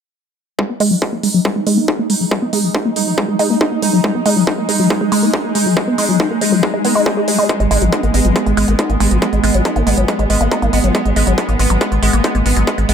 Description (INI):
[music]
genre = psychedelic trance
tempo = 139 BPM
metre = 4/4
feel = straight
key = G# minor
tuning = A4 = 442 Hz
[part]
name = pulsing gated texture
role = sustained chords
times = 0.6-12.9 s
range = G#3 to D#4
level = -19 LUFS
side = right 1 dB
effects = chorus, built-in reverb, sidechain pumping
[part]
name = woody wave-folded pluck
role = riff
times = 0.6-12.9 s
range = F#3 to G#4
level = -16 LUFS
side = left 1 dB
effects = chorus, auto-pan, sidechain pumping, dub echo
[part]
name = electronic kick drum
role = drums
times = 0.6-12.8 s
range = none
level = -20 LUFS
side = equal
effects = distortion, high-pass filter on kick, high-pass filter on room
[part]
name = electronic hi-hat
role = drums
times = 0.8-12.9 s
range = none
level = -22 LUFS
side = right 3 dB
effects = none
[part]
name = round analog bass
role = bass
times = 7.6-12.9 s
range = G#1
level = -16 LUFS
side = equal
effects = none
[sound]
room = light reverb, digital ambience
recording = none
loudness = -13 LUFS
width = side -7 dB against mid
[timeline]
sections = 0.6-12.9 A section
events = filter sweep on synth arpeggio sound 0.6-12.9; filter sweep on synth texture 0.6-12.9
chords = 0.6 G#5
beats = | 0.59 1.02 1.45 1.88 | 2.31 2.75 3.18 3.61 | 4.04 4.47 4.90 5.33 | 5.77 6.20 6.63 7.06 | 7.49 7.92 8.36 8.79 | 9.22 9.65 10.08 10.52 | 10.95 11.38 11.81 12.24 | 12.67